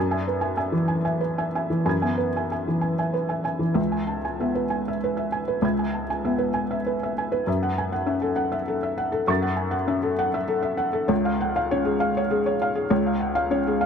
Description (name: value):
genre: neoclassical minimalist piano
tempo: 66 BPM (dotted quarters)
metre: 6/8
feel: rubato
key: unclear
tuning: A4 = 442 Hz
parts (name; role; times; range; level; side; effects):
- felt-muted upright piano; solo; 0.0-13.9 s; C#2 to A6; -22 LUFS; equal; none
room: moderate huge ambient reverb, RT60 8.3 s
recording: none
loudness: -22 LUFS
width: side -7 dB against mid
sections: 0.0-3.8 A section; 3.8-13.9 B section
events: none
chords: 0.0 E/F#; 3.8 C#m7; 7.5 F#m7; 11.1 C#